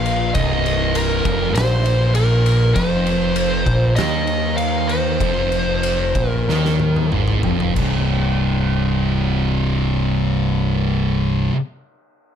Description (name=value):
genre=stoner and doom metal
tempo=97 BPM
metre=4/4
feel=uneven beats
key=C minor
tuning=A4 = 440 Hz
part: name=fuzz lead guitar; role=melody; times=0.0-7.1 s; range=Bb4 to F5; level=-22 LUFS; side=equal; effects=distortion, tape echo
part: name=thick fuzz guitar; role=riff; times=0.0-11.6 s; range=C2 to Eb3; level=-22 LUFS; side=left 8 dB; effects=distortion
part: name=thick fuzz guitar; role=riff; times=0.0-11.5 s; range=C2 to Eb3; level=-20 LUFS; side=right 6 dB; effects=distortion
part: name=growling fingered electric bass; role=bass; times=0.0-11.5 s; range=C1 to Eb2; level=-24 LUFS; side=equal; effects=overdrive
part: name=oversized low-tuned drum kit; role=drums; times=0.1-7.9 s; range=crash cymbal, kick drum, ride cymbal, snare drum, toms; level=-25 LUFS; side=equal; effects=none
room=light reverb, small room ambience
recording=none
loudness=-16 LUFS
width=side -8 dB against mid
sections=0.0-7.8 A section; 7.8-10.4 B section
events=slowing down 2.8-7.8; drum fill 6.5-7.8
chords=0.0 Cm; 2.8 F5; 7.8 C5